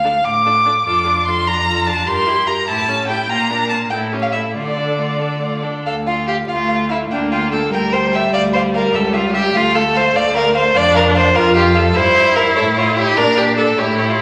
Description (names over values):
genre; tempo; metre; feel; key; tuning
quick classical-period movement for string quartet; 98 BPM (dotted quarters); 6/8; rubato; D minor; A4 = 440 Hz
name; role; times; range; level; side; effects
clear violin; melody; 0.0-14.1 s; C#5 to D6; -21 LUFS; equal; none
rich violin; second line; 0.0-14.2 s; D4 to E5; -19 LUFS; equal; none
clear viola; accompaniment; 0.0-14.2 s; G3 to G4; -23 LUFS; equal; none
clear cello; bass; 0.0-14.2 s; C#2 to D3; -24 LUFS; equal; none
room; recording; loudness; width
wet recital hall reverb, RT60 1.7 s; vinyl crackle; -16 LUFS; mono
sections
0.0-5.9 A section; 5.9-14.2 B section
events
none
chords
0.0 Dm; 0.9 Dm/F; 2.1 Edim/G; 2.7 A7; 3.3 Bb; 3.9 A7; 4.6 Dm; 7.1 Gm/D; 8.3 Dm; 8.9 A7b13/C#; 9.6 Dm; 10.8 Dm/F; 11.9 C7/G; 12.6 A; 13.2 Bb